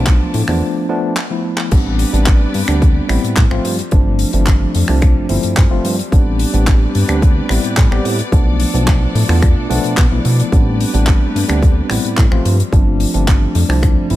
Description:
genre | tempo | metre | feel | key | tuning
nu-disco, nu disco | 109 BPM | 4/4 | straight | A minor | A4 = 439 Hz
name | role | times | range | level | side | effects
bright tine electric piano | accompaniment | 0.0-14.2 s | F3 to G4 | -18 LUFS | left 1 dB | medium stereo tremolo, sidechain pumping, ping-pong delay
rich studio string section | sustained chords | 0.0-14.2 s | F3 to D6 | -28 LUFS | left 1 dB | sidechain pumping
chorused synth bass | bass | 0.0-14.2 s | G1 to B2 | -16 LUFS | equal | sidechain pumping
electronic kick drum | drums | 0.1-13.9 s | none | -12 LUFS | equal | small room reverb
tight funk drum kit | drums | 0.1-14.2 s | crash cymbal, finger snaps, handclaps, hi-hat | -22 LUFS | left 1 dB | small room reverb
room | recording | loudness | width
studio ambience | none | -12 LUFS | side -15 dB against mid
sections
0.0-1.7 A section; 1.7-14.2 B section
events
break 0.6-1.7; drum fill 1.2-1.7; drop 1.7-14.2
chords
0.0 Bm7b5; 1.7 Am11; 3.6 G7sus4; 6.1 Am11; 8.3 Bm7b5; 10.5 Am11; 12.5 G7sus4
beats
0.07 0.62 1.17 | 1.72 2.27 2.82 3.37 | 3.92 4.47 5.02 5.57 | 6.12 6.67 7.22 7.77 | 8.32 8.87 9.43 9.97 | 10.53 11.08 11.63 12.18 | 12.73 13.28 13.83

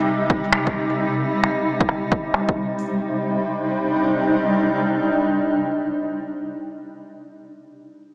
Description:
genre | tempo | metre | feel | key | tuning
future garage | 132 BPM | 4/4 | swing 63% on 16ths | C minor | A4 = 443 Hz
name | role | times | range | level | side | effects
granular cloud pad | sustained chords | 0.0-6.3 s | C3 to Eb4 | -23 LUFS | equal | built-in reverb, sidechain pumping
electronic kick drum | drums | 0.3-2.6 s | none | -25 LUFS | equal | overdrive
electronic shaker, finger snaps and claves | drums | 0.4-2.8 s | none | -26 LUFS | equal | overdrive, low-pass filter on perc, low-pass filter on snare
room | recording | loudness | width
wet lush hall reverb, RT60 2.0 s | small speaker sound | -22 LUFS | mono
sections
0.0-2.8 A section; 2.8-6.4 B section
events
filter sweep on drum 0.0-2.8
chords
0.0 Cm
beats
0.07 0.52 | 0.98 1.43 1.89 2.34 | 2.79 3.25 3.70 4.16 | 4.61 5.07 5.52 5.98

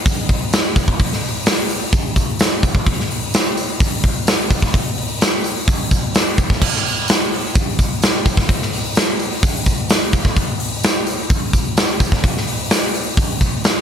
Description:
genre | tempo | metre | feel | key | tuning
rock | 128 BPM | 4/4 | straight | none | none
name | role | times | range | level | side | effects
big rock drum kit | drums | 0.1-13.8 s | crash cymbal, hi-hat, kick drum, snare drum | -15 LUFS | equal | none
tambourine | percussion | 0.1-13.8 s | none | -31 LUFS | right 5 dB | none
room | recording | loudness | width
light reverb, small room reverb | none | -15 LUFS | side -8 dB against mid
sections
0.0-13.8 A section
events
none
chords
none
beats
0.06 0.53 | 1.00 1.46 1.93 2.40 | 2.87 3.33 3.80 4.27 | 4.74 5.21 5.68 6.15 | 6.61 7.08 7.55 8.02 | 8.49 8.96 9.43 9.90 | 10.37 10.84 11.30 11.77 | 12.24 12.71 13.18 13.65

